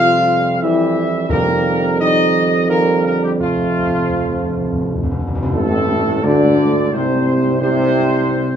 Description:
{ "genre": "classical, ceremonial fanfare", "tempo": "86 BPM", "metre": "3/4", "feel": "straight", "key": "unclear", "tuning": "A4 = 439 Hz", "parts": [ { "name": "dark trumpet section", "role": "melody", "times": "0.0-8.6 s", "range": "F4 to F5", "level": "-19 LUFS", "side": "equal", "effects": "none" }, { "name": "clear trombone section", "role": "sustained chords", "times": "0.0-8.6 s", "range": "A2 to A3", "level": "-22 LUFS", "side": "right 2 dB", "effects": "none" }, { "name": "dark French horn section", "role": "sustained chords", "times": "0.0-8.6 s", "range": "F3 to F4", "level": "-22 LUFS", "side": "left 7 dB", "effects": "none" }, { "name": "warm tuba", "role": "bass", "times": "0.0-8.6 s", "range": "A1 to F2", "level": "-18 LUFS", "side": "right 3 dB", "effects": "none" }, { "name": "timpani", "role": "percussion", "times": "1.3-6.5 s", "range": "F2", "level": "-23 LUFS", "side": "left 1 dB", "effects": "none" }, { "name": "tam-tam", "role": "percussion", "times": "5.5-8.3 s", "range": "none", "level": "-26 LUFS", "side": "left 2 dB", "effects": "none" } ], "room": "moderate large studio reverb, RT60 0.8 s", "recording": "minimal, uncompressed stereo recording", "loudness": "-14 LUFS", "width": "side -8 dB against mid", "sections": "0.0-5.5 A section; 5.5-8.6 A section", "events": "timpani fill 3.4-5.5; band accent 5.5-6.2", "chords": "0.0 C/F; 1.3 Eb/F; 3.4 F; 5.5 Amadd11" }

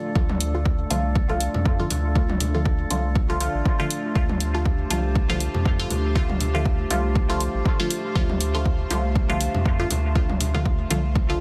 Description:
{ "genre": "dub techno", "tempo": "120 BPM", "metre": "4/4", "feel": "swing 56% on 16ths", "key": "D minor", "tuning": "A4 = 440 Hz", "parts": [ { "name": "dark analog pad", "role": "sustained chords", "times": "0.0-11.4 s", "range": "A3 to D5", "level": "-35 LUFS", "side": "equal", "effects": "subtle chorus, sidechain pumping" }, { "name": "drifting glass-harmonics texture", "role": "texture", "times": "0.0-11.4 s", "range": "A3 to C5", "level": "-38 LUFS", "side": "equal", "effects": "chorus, built-in reverb, sidechain pumping" }, { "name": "filtered dub chord stab", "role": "stabs", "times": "0.2-11.4 s", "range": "D3 to F4", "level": "-30 LUFS", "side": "equal", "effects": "phaser, dub echo" }, { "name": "warm sub bass", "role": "bass", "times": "0.2-11.4 s", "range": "A1 to F2", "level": "-28 LUFS", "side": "equal", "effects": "sidechain pumping" }, { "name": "electronic kick drum", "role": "drums", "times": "0.2-11.3 s", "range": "none", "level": "-25 LUFS", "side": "equal", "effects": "overdrive, studio ambience" }, { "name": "electronic toms and congas", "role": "percussion", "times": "0.3-11.0 s", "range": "none", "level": "-33 LUFS", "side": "equal", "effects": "sidechain pumping on toms, studio ambience, sidechain pumping on perc" }, { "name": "electronic hi-hat", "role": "drums", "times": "0.4-11.0 s", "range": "none", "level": "-30 LUFS", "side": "equal", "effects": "overdrive, studio ambience" } ], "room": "light reverb", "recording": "dense, heavily limited modern master", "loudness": "-23 LUFS", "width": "mono", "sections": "0.0-11.4 A section", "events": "none", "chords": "0.0 Dm" }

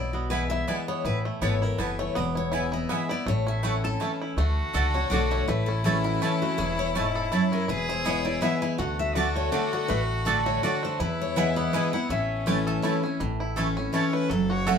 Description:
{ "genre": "bluegrass", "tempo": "163 BPM", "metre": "3/4", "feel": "swing 55% on 8ths", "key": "A major", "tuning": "A4 = 440 Hz", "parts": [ { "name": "bluegrass banjo", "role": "melody", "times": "0.0-14.8 s", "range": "E3 to A4", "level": "-33 LUFS", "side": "right 2 dB", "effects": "none" }, { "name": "picked steel-string acoustic guitar", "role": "melody", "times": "0.0-13.1 s", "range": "E4 to A5", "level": "-32 LUFS", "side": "left 5 dB", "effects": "none" }, { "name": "picked steel-string acoustic guitar", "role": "accompaniment", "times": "0.0-14.8 s", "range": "E2 to F#4", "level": "-28 LUFS", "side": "equal", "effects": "none" }, { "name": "upright bass", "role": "bass", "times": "0.0-14.8 s", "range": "E1 to E2", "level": "-30 LUFS", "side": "equal", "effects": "none" }, { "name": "mandolin", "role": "stabs", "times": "0.3-14.8 s", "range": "A3 to A5", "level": "-30 LUFS", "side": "right 5 dB", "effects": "none" }, { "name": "clear fiddle", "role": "second line", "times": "4.4-14.8 s", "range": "C#4 to E5", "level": "-31 LUFS", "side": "left 3 dB", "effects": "none" } ], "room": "moderate studio ambience, RT60 0.5 s", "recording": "band playing live in one room", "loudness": "-24 LUFS", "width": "side -7 dB against mid", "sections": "0.0-4.4 A section; 4.4-13.2 B section; 13.2-14.8 C section", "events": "fiddle solo 13.2-14.8", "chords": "0.0 E; 1.1 Asus2; 2.2 E; 3.3 A; 4.4 D; 5.5 A; 7.7 E; 8.8 D; 11.0 E; 12.1 A" }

